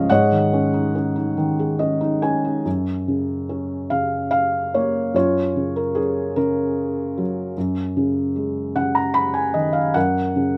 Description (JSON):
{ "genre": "classical, lyrical solo piano", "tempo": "49 BPM (dotted quarters)", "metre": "6/8", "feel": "rubato", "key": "F# major", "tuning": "A4 = 440 Hz", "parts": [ { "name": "felt-muted upright piano", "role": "solo", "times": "0.0-10.6 s", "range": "F#2 to B5", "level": "-21 LUFS", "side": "equal", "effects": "none" } ], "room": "light reverb", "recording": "close, detailed microphones", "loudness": "-21 LUFS", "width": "mono", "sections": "0.0-2.7 A section; 2.7-10.6 B section", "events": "felt piano fill 1.4-2.7", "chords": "0.1 Ab7sus4; 2.7 F#; 5.1 F#maj9; 7.6 F#69; 10.0 F#" }